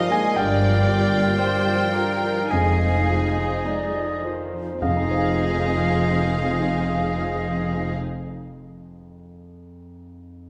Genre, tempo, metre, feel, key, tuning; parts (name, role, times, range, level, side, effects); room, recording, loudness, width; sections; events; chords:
cinematic, emotional film score for orchestra; 52 BPM; 4/4; rubato; F dorian; A4 = 440 Hz
warm symphonic violin section; melody; 0.0-8.0 s; Ab4 to Eb5; -33 LUFS; equal
bright silver concert flute; second line; 0.0-8.0 s; Bb4 to F5; -32 LUFS; equal
clear oboe; second line; 0.0-8.0 s; Eb5 to F5; -32 LUFS; equal
warm clarinet; second line; 0.0-7.9 s; Ab4 to D5; -35 LUFS; equal
warm symphonic violin section; second line; 0.0-7.9 s; F5 to Ab5; -33 LUFS; equal
warm grand piano; accompaniment; 0.0-10.5 s; F2 to Ab5; -30 LUFS; equal
warm symphonic viola section; accompaniment; 0.0-8.0 s; D3 to F4; -32 LUFS; equal
mellow French horn section; sustained chords; 0.0-7.9 s; F3 to F4; -31 LUFS; equal
rich studio double bass section; bass; 0.4-8.0 s; F1 to G1; -30 LUFS; equal
warm symphonic cello section; bass; 0.4-8.0 s; F2 to G2; -31 LUFS; equal
timpani; percussion; 4.8-7.9 s; barely audible
wet concert hall reverb, RT60 1.8 s; -22 LUFS; mono
0.0-4.8 A section; 4.8-9.4 B section
slowing down 0.0-4.8
0.4 Gm7; 2.5 Fm7